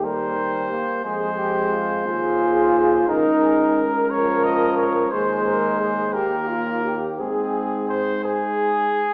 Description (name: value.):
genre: classical, brass quintet.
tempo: 59 BPM (dotted quarters).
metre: 6/8.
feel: straight.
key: Ab major.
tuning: A4 = 441 Hz.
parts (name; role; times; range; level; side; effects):
clear trumpet; melody; 0.0-9.1 s; Ab4 to Eb5; -27 LUFS; equal; none.
mellow flugelhorn; second line; 0.0-9.1 s; F4 to C5; -28 LUFS; equal; none.
mellow French horn; accompaniment; 0.0-8.9 s; F4 to Bb4; -30 LUFS; equal; none.
warm trombone; accompaniment; 0.0-8.3 s; F3 to F4; -25 LUFS; equal; none.
mellow bass trombone; bass; 0.0-9.0 s; Db2 to Ab2; -31 LUFS; equal; none.
room: wet recital hall reverb, RT60 1.6 s.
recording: recorded in a church or concert hall, small speaker sound.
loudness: -21 LUFS.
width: mono.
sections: 0.0-9.1 A section.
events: none.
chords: 0.0 Cm/Eb; 1.0 Fm; 3.1 Bbm/Db; 5.1 Ab/Eb; 6.1 Eb; 7.2 Ab.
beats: 0.04 | 1.05 2.07 | 3.09 4.10 | 5.12 6.14 | 7.20 8.26.